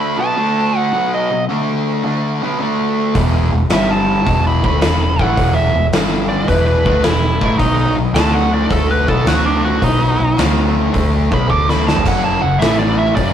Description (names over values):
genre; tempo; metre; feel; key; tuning
blues rock power trio and southern rock; 108 BPM; 4/4; swing 68% on 8ths; unclear; A4 = 439 Hz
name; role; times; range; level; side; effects
nasal lead guitar with a parked wah; melody; 0.0-13.3 s; D4 to D6; -18 LUFS; right 2 dB; overdrive
fuzz guitar; riff; 0.0-13.3 s; E2 to D4; -18 LUFS; equal; distortion
oversized low-tuned drum kit; drums; 3.1-13.3 s; crash cymbal, hi-hat, kick drum, snare drum, toms; -18 LUFS; equal; none
vintage muted fingered electric bass; bass; 3.2-13.3 s; E1 to D2; -18 LUFS; equal; none
room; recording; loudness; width
moderate stone room reverb, RT60 1.1 s; rough rehearsal-room recording; -13 LUFS; side -9 dB against mid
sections
0.0-13.3 A section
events
drum fill 11.5-12.0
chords
0.4 D5; 0.9 B; 1.5 D5; 2.0 B5; 2.6 D5; 3.1 E5; 3.7 G5; 4.3 E5; 5.9 G5; 6.5 E5; 7.6 B; 8.2 D5; 8.7 B5; 9.3 D5; 9.8 B; 10.4 D5; 10.9 B5; 11.5 D5; 12.0 F#5; 12.6 A5